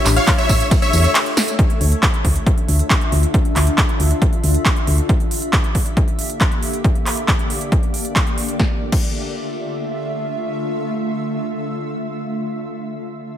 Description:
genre	uplifting trance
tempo	137 BPM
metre	4/4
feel	straight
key	D harmonic minor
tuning	A4 = 440 Hz
part	big supersaw lead	melody	0.0-1.1 s	C#5 to F5	-22 LUFS	equal	sidechain pumping, dub echo
part	analog pluck	second line	0.0-1.1 s	E5 to F5	-29 LUFS	left 2 dB	none
part	shimmering ambient pad	sustained chords	0.0-12.9 s	D3 to E5	-24 LUFS	left 1 dB	chorus, built-in reverb, sidechain pumping
part	solid FM bass	bass	0.1-5.0 s	A1 to E2	-16 LUFS	equal	sidechain pumping
part	big-room dance drum kit	drums	0.1-9.1 s	crash cymbal, handclaps, hi-hat, ride cymbal, snare drum, tambourine	-21 LUFS	right 1 dB	overdrive
part	electronic kick drum	drums	0.3-9.1 s	none	-17 LUFS	equal	overdrive
room	light reverb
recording	none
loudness	-16 LUFS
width	side -10 dB against mid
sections	0.0-1.6 A section; 1.6-8.6 B section; 8.6-12.1 C section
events	drop 0.0-1.6; break 1.1-1.6; drum fill 1.4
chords	0.0 A; 1.6 Dmadd9; 5.1 Edim/D; 8.6 Dmadd9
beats	0.28 0.71 1.15 | 1.59 2.03 2.46 2.90 | 3.34 3.78 4.22 4.65 | 5.09 5.53 5.97 6.41 | 6.84 7.28 7.72 8.16 | 8.60 9.03 9.47 9.91 | 10.35 10.79 11.22 11.66

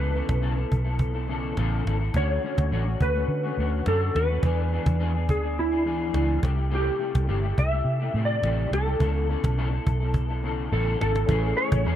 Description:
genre	indie pop, bedroom pop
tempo	105 BPM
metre	4/4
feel	straight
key	A major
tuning	A4 = 442 Hz
part	clean lap steel guitar	melody	0.0-12.0 s	E4 to E5	-28 LUFS	equal	ensemble chorus, tape echo
part	electric guitar at the edge of break-up	accompaniment	0.0-12.0 s	C3 to A4	-31 LUFS	left 3 dB	ensemble chorus, vibrato effect
part	vintage muted fingered electric bass	bass	0.0-12.0 s	G1 to D3	-25 LUFS	equal	none
part	cajon	drums	0.1-11.9 s	none	-26 LUFS	equal	none
part	warm analog keys	accompaniment	11.3-12.0 s	C#4 to B4	-35 LUFS	right 4 dB	chorus
part	soft string machine	sustained chords	11.3-12.0 s	C#3 to G#4	-36 LUFS	left 4 dB	phaser, ensemble chorus
room	little or no reverb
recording	dry, close 1970s-style studio recording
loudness	-22 LUFS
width	side -11 dB against mid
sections	0.0-11.3 A section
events	drum fill 10.7-11.3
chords	0.0 Aadd9; 2.1 Dmaj7; 4.4 E7; 6.4 C6; 9.0 Aadd9; 11.3 Amaj7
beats	0.43 1.00 1.57 | 2.14 2.71 3.29 3.86 | 4.43 5.00 5.57 6.14 | 6.71 7.29 7.86 8.43 | 9.00 9.57 10.14 10.71 | 11.28 11.86

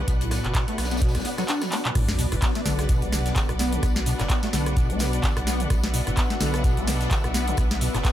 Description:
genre	acid house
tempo	128 BPM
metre	4/4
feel	swing 56% on 16ths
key	B minor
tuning	A4 = 439 Hz
part	string machine, full ensemble	sustained chords	0.0-8.1 s	B3 to F#5	-32 LUFS	equal	ensemble chorus, sidechain pumping
part	saturated sub bass	bass	0.0-8.0 s	F#1 to B1	-28 LUFS	equal	sidechain pumping
part	clear studio string section	texture	0.0-8.1 s	D4 to F#5	-34 LUFS	left 2 dB	sidechain pumping
part	acid bass, square	riff	0.1-8.1 s	B1 to D4	-28 LUFS	equal	overdrive, ensemble chorus, sidechain pumping, tape echo
part	booming analog drum machine	drums	0.1-8.1 s	crash cymbal, handclaps, hi-hat, rim click, shaker, snare drum	-29 LUFS	equal	none
part	crisp fusion drum kit	drums	0.1-8.1 s	hi-hat, snare drum, tambourine	-39 LUFS	left 1 dB	sidechain pumping on hats, high-pass filter on hats, high-pass filter on snare, sidechain pumping on perc, high-pass filter on perc, high-pass filter on room, analog delay
part	electronic kick drum	drums	0.1-8.1 s	none	-24 LUFS	equal	none
part	sub drop	sound effects	2.0-3.8 s	none	-34 LUFS	equal	none
room	little or no reverb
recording	echo-heavy mix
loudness	-21 LUFS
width	side -12 dB against mid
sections	0.0-2.0 A section; 2.0-8.1 B section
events	drum fill 1.7; drop 2.0-8.1; impact 2.0-3.8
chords	0.0 Bm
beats	| 0.08 0.55 1.01 1.48 | 1.95 2.42 2.89 3.36 | 3.83 4.30 4.76 5.23 | 5.70 6.17 6.64 7.11 | 7.58 8.05

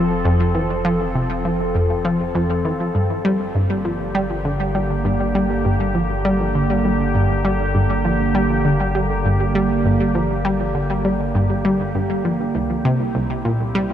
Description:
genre	ambient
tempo	100 BPM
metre	4/4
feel	straight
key	unclear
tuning	A4 = 438 Hz
part	evolving wavetable pad	sustained chords	0.0-13.9 s	D3 to A4	-22 LUFS	right 1 dB	chorus, built-in reverb
part	analog pluck	riff	0.0-13.9 s	C2 to G3	-20 LUFS	equal	chorus, tape echo
part	round analog bass	bass	0.0-13.9 s	F1 to C2	-27 LUFS	equal	none
room	moderate huge ambient reverb, RT60 9.6 s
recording	cassette tape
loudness	-17 LUFS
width	side -10 dB against mid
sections	0.0-13.9 A section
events	none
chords	0.0 F; 2.9 Gm; 12.5 C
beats	| 0.55 1.15 1.75 2.35 | 2.95 3.55 4.15 4.75 | 5.35 5.95 6.55 7.15 | 7.75 8.35 8.95 9.55 | 10.15 10.75 11.35 11.95 | 12.55 13.15 13.75

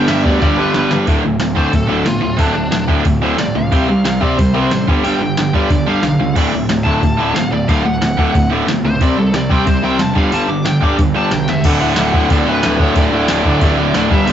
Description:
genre	punk rock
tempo	182 BPM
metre	4/4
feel	straight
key	D major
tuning	A4 = 440 Hz
part	bluesy overdriven lead guitar	melody	0.0-14.3 s	D4 to D6	-22 LUFS	equal	distortion, slapback echo
part	fuzz guitar	riff	0.0-0.9, 11.6-14.3 s	D2 to G4	-19 LUFS	right 1 dB	distortion
part	overdriven electric guitar	riff	0.0-14.3 s	D2 to C4	-18 LUFS	left 6 dB	none
part	tight distorted guitar	riff	0.0-14.3 s	D2 to C4	-17 LUFS	right 7 dB	distortion
part	fuzz picked electric bass	bass	0.0-14.3 s	D1 to D2	-22 LUFS	equal	overdrive
part	soft vintage rhythm box	drums	0.1-14.3 s	crash cymbal, hi-hat, kick drum, snare drum	-17 LUFS	equal	none
room	moderate stone room reverb, RT60 0.9 s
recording	rough rehearsal-room recording, nothing above 7.7 kHz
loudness	-12 LUFS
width	side -10 dB against mid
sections	0.0-1.1 A section; 1.1-11.6 B section; 11.6-14.3 C section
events	drum fill 0.4-1.1, 11.5; lead electric guitar solo 1.1-11.6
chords	0.0 G; 1.1 D5; 3.7 C5; 4.9 G5; 6.4 D; 9.0 C; 10.2 G5; 11.6 D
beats	0.08 0.41 0.74 | 1.07 1.40 1.73 2.06 | 2.39 2.73 3.06 3.39 | 3.72 4.05 4.38 4.71 | 5.04 5.37 5.70 6.03 | 6.36 6.69 7.03 7.36 | 7.69 8.02 8.35 8.68 | 9.01 9.34 9.67 10.00 | 10.33 10.66 10.99 11.32 | 11.65 11.98 12.31 12.63 | 12.96 13.29 13.62 13.95 | 14.28

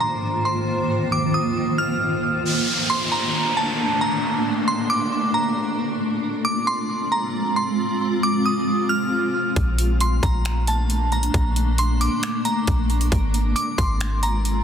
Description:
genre	hip hop, atmospheric cloud-rap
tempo	135 BPM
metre	4/4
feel	half-time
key	Bb major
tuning	A4 = 441 Hz
part	glassy synth bell	melody	0.0-14.6 s	A5 to F6	-24 LUFS	right 1 dB	chorus, low-pass filter, tape echo
part	granular cloud pad	sustained chords	0.0-14.6 s	Ab2 to C5	-23 LUFS	equal	built-in reverb, sidechain pumping, low-pass filter
part	downlifter	sound effects	2.5-6.0 s	none	-26 LUFS	equal	none
part	soft 808-style bass	bass	9.6-14.6 s	Ab1 to Bb1	-21 LUFS	equal	none
part	trap drum kit	drums	9.6-14.6 s	finger snaps, hi-hat, kick drum	-25 LUFS	equal	overdrive, soft clipping on snare
room	light reverb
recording	dense, heavily limited modern master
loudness	-19 LUFS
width	side -8 dB against mid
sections	0.0-2.5 A section; 2.5-14.6 B section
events	none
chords	0.0 Ab6; 2.5 Bbmaj7; 6.0 Ab6; 9.6 Bbmaj7; 13.1 Ab6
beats	0.23 | 0.68 1.12 1.56 2.01 | 2.45 2.90 3.34 3.79 | 4.23 4.67 5.12 5.56 | 6.01 6.45 6.90 7.34 | 7.79 8.23 8.68 9.12 | 9.56 10.01 10.45 10.90 | 11.34 11.79 12.23 12.68 | 13.12 13.56 14.01 14.45

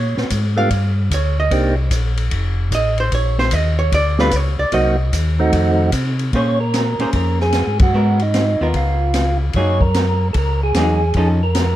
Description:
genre	soul jazz organ trio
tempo	149 BPM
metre	4/4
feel	swing 65% on 8ths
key	Bb minor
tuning	A4 = 440 Hz
part	archtop guitar, miked and amplified	accompaniment	0.0-11.4 s	F3 to F5	-21 LUFS	right 1 dB	none
part	mellow tonewheel organ	bass	0.0-11.8 s	F1 to C3	-18 LUFS	equal	chorus vibrato, slow rotary speaker
part	open jazz drum kit	drums	0.2-11.7 s	hi-hat, kick drum, ride cymbal, snare drum	-22 LUFS	left 1 dB	none
part	percussive tonewheel organ	melody	0.6-1.8, 4.2-11.8 s	Eb3 to Db5	-20 LUFS	right 2 dB	slow rotary speaker, plate reverb
room	light reverb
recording	dark, warm production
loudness	-15 LUFS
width	side -13 dB against mid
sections	0.0-6.3 A section; 6.3-11.8 B section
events	hollow-body jazz guitar solo 0.0-6.3; band accent 7.7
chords	0.0 Bbm7; 0.7 G5; 1.5 Cm7; 2.3 F; 3.1 Bbmadd11; 3.9 G7; 4.7 Cm7b5; 5.5 F7b9; 6.3 Bbm9; 7.9 Abm9; 8.7 Db6; 9.5 Gb69; 11.2 Faug7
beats	0.31 0.71 1.11 | 1.51 1.92 2.32 2.72 | 3.12 3.52 3.92 4.33 | 4.73 5.13 5.53 5.93 | 6.33 6.73 7.14 7.54 | 7.94 8.34 8.74 9.14 | 9.55 9.95 10.35 10.75 | 11.16 11.56

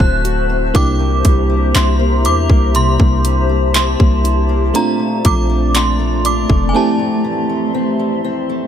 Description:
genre	contemporary R&B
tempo	60 BPM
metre	4/4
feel	straight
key	unclear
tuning	A4 = 439 Hz
part	synth chime	melody	0.0-8.2 s	Ab5 to F#6	-21 LUFS	right 2 dB	ensemble chorus, tape echo
part	FM electric piano	accompaniment	0.0-8.7 s	A3 to G4	-20 LUFS	right 4 dB	chorus
part	granular cloud pad	sustained chords	0.0-8.7 s	A3 to C6	-22 LUFS	left 3 dB	built-in reverb, sidechain pumping
part	fingerpicked acoustic archtop guitar	arpeggios	0.0-8.7 s	F2 to F#4	-22 LUFS	left 9 dB	tape echo
part	warm 808-style bass	bass	0.0-6.7 s	D1 to E2	-16 LUFS	equal	none
part	trap drum kit	drums	0.0-6.7 s	handclaps, hi-hat, kick drum	-14 LUFS	equal	overdrive
room	little or no reverb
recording	none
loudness	-12 LUFS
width	side -9 dB against mid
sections	0.0-8.7 A section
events	break 6.7-8.7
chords	0.0 D7; 0.7 C7; 4.7 Bbmaj7; 6.7 Fmaj7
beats	| 0.75 1.75 2.75 3.75 | 4.75 5.75 6.75 7.75

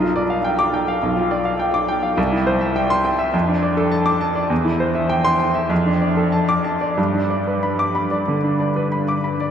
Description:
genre	classical, virtuoso piano study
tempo	90-104 BPM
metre	4/4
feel	rubato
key	unclear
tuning	A4 = 438 Hz
part	clear baby grand piano	solo	0.0-9.5 s	B1 to D6	-17 LUFS	equal	none
room	wet huge ambient reverb, RT60 8.4 s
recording	in a vast, echoing space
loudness	-17 LUFS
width	side -8 dB against mid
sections	0.0-9.5 A section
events	none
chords	0.0 G7/B; 2.2 C; 3.3 Dm/F; 4.5 C/E; 5.7 Dm/F; 7.0 G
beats	0.44 1.02 1.60 | 2.18 2.76 3.34 3.93 | 4.51 5.10 5.71 6.33 | 6.98 7.63 8.28 8.93

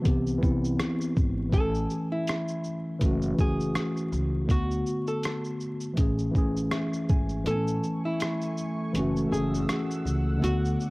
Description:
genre	lo-fi hip hop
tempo	81 BPM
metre	4/4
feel	swing 57% on 16ths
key	A major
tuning	A4 = 440 Hz
part	archtop guitar, miked and amplified	melody	0.0-10.9 s	E4 to A4	-33 LUFS	equal	analog delay
part	mellow tine electric piano	accompaniment	0.0-10.9 s	D3 to G#5	-28 LUFS	equal	medium stereo tremolo, cassette tape
part	upright bass	bass	0.1-10.7 s	F#1 to D2	-30 LUFS	equal	none
part	lo-fi sampler-style drum kit	drums	0.1-10.9 s	hi-hat, kick drum, rim click, shaker	-28 LUFS	equal	cassette tape
part	lush unison pad	sustained chords	7.8-10.9 s	A3 to E6	-38 LUFS	right 1 dB	chorus, cassette tape
room	light reverb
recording	home recording on cassette, vinyl crackle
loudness	-25 LUFS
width	side -24 dB against mid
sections	0.0-7.5 A section; 7.5-10.9 A section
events	tine electric piano fill 6.3-7.5; kick muted 7.5-10.9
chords	0.0 Cmaj7; 1.5 Amaj7; 3.0 F#m7; 4.5 D6; 6.0 Amaj7; 8.9 F#m7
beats	0.04 0.78 | 1.52 2.27 3.01 3.75 | 4.49 5.23 5.97 6.71 | 7.45 8.19 8.93 9.67 | 10.41

